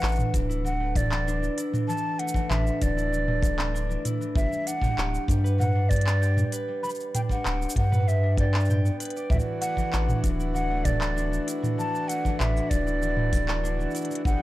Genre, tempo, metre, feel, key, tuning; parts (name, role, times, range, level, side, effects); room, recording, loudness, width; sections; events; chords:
folktronica; 97 BPM; 4/4; straight; A4 = 441 Hz
mellow hollow jazz flute; melody; 0.0-14.4 s; D5 to B5; -31 LUFS; right 1 dB; digital delay
concert harp; arpeggios; 0.0-14.4 s; E3 to G5; -31 LUFS; left 1 dB; vintage 12-bit sampler grit, digital delay
round analog bass; bass; 0.0-14.4 s; D1 to G2; -26 LUFS; equal
organic electronic drum kit; drums; 0.0-14.4 s; handclaps, hi-hat, shaker, toms; -30 LUFS; right 2 dB
kick drum; drums; 0.3-14.4 s; -26 LUFS; equal
pedal harmonium; sustained chords; 9.3-14.4 s; D3 to G4; -36 LUFS; right 1 dB
small room reverb; dark, warm production; -23 LUFS; side -16 dB against mid
0.0-14.4 A section
0.0 Dadd9